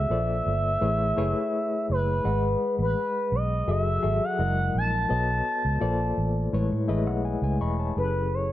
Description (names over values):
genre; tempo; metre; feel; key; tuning
lush 1970s-style soul; 84 BPM; 4/4; straight; unclear; A4 = 436 Hz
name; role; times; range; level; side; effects
expressive portamento lead; melody; 0.0-8.5 s; B4 to A5; -27 LUFS; equal; chorus
mellow reed electric piano; accompaniment; 0.0-8.5 s; F#3 to C#6; -29 LUFS; left 4 dB; fast tremolo
vintage muted fingered electric bass; bass; 0.0-8.5 s; E1 to A2; -26 LUFS; right 1 dB; none
room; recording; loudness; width
light reverb, digital ambience; none; -23 LUFS; side -14 dB against mid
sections
0.0-8.0 A section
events
reed electric piano fill 6.5-8.0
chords
0.1 A#maj9; 0.8 Amaj9; 2.2 G#m7; 3.7 F#m9; 4.4 F#13; 5.1 B9; 5.8 A#maj9; 6.5 Amaj9; 8.0 F#m11